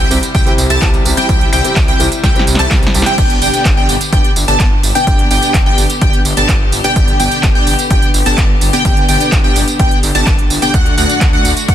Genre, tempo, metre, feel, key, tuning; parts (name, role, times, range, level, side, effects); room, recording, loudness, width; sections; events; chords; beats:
EDM, festival progressive house; 127 BPM; 4/4; straight; G major; A4 = 440 Hz
warm chamber string section; sustained chords; 0.0-11.7 s; C3 to G4; -22 LUFS; left 4 dB; vintage 12-bit sampler grit, sidechain pumping
plucky unison lead; arpeggios; 0.0-11.7 s; F#5 to A5; -16 LUFS; equal; wide subtle chorus, sidechain pumping, dub echo
dense compressed supersaw; riff; 0.0-11.7 s; A3 to A5; -20 LUFS; equal; cassette tape, sidechain pumping, dub echo
wide detuned saw bass; bass; 0.0-11.7 s; G1 to D2; -18 LUFS; equal; chorus, sidechain pumping
big-room dance drum kit; drums; 0.0-11.7 s; crash cymbal, finger snaps, handclaps, hi-hat, snare drum, tambourine; -18 LUFS; right 2 dB; overdrive
warm concert grand piano; accompaniment; 0.1-3.2 s; G2 to G4; -20 LUFS; right 1 dB; sidechain pumping, dub echo
electronic kick drum; drums; 0.3-11.7 s; -13 LUFS; equal; overdrive
light reverb, digital ambience; dense, heavily limited modern master; -9 LUFS; side -11 dB against mid
0.0-3.2 A section; 3.2-11.7 A section
drop 0.0-3.2, 3.2-11.7; drum fill 2.2-3.2
0.0 C; 3.2 G; 10.7 D
0.35 0.82 | 1.29 1.76 2.24 2.71 | 3.18 3.65 4.13 4.60 | 5.07 5.54 6.02 6.49 | 6.96 7.43 7.91 8.38 | 8.85 9.32 9.79 10.27 | 10.74 11.21 11.69